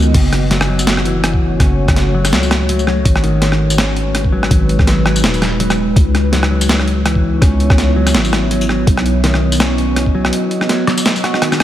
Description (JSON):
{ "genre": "half-time drum and bass", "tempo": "165 BPM", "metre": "4/4", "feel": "swing 56% on 16ths, half-time", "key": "F# dorian", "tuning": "A4 = 440 Hz", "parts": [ { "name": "deep dark ambient pad", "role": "sustained chords", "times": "0.0-11.6 s", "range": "G#3 to D#5", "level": "-20 LUFS", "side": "right 1 dB", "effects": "chorus, built-in reverb, sidechain pumping" }, { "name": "clean electric guitar", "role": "arpeggios", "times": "0.0-11.6 s", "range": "D#3 to F#4", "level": "-20 LUFS", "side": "left 2 dB", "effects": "analog delay" }, { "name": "growling 808-style bass", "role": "bass", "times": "0.0-10.3 s", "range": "D#1 to C#2", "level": "-16 LUFS", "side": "equal", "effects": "none" }, { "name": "boom bap sampler-style drum kit", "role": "drums", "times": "0.0-11.6 s", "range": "crash cymbal, hi-hat, rim click, snare drum, tambourine", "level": "-17 LUFS", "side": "equal", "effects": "small room reverb" }, { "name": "electronic kick drum", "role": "drums", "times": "0.1-10.1 s", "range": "none", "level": "-14 LUFS", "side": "equal", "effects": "small room reverb" } ], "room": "light reverb, digital ambience", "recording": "none", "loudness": "-11 LUFS", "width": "side -12 dB against mid", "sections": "0.0-11.6 A section", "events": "drum fill 11.2-11.6", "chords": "0.1 F#m; 3.1 G#m; 6.0 C#m7; 8.9 B", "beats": "| 0.14 0.51 0.87 1.24 | 1.60 1.96 2.33 2.69 | 3.05 3.42 3.78 4.14 | 4.51 4.87 5.24 5.60 | 5.96 6.33 6.69 7.05 | 7.42 7.78 8.14 8.51 | 8.87 9.24 9.60 9.96 | 10.33 10.69 11.05 11.42" }